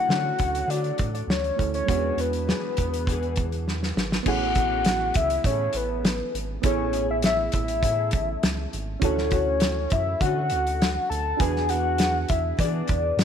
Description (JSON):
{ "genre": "indie pop, bedroom pop", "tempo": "101 BPM", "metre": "4/4", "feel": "straight", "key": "A major", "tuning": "A4 = 439 Hz", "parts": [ { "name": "soft octave-layered synth lead", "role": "melody", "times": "0.0-13.2 s", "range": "B4 to A5", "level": "-26 LUFS", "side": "left 2 dB", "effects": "wide subtle chorus, slapback echo" }, { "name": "flamenco guitar", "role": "accompaniment", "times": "0.0-13.2 s", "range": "D3 to G#4", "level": "-34 LUFS", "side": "left 11 dB", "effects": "ensemble chorus, warbly pitch drift" }, { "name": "reed electric piano", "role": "accompaniment", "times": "0.0-13.2 s", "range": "C#3 to B4", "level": "-33 LUFS", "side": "right 15 dB", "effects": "cassette tape" }, { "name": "round analog bass", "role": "bass", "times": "0.1-13.2 s", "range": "G#1 to E3", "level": "-29 LUFS", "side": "right 1 dB", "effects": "none" }, { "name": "loose indie drum kit", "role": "drums", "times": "0.1-13.2 s", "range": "crash cymbal, hi-hat, kick drum, snare drum", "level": "-26 LUFS", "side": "equal", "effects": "none" } ], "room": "light reverb, studio reverb", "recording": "1960s-style stereo with parts hard left and right", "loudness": "-22 LUFS", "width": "side -8 dB against mid", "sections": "0.0-4.3 A section; 4.3-13.2 B section", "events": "drum fill 3.7-4.3", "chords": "0.0 Dmaj7; 1.9 E7; 4.3 Amaj7; 9.0 Dmaj7; 11.4 E7" }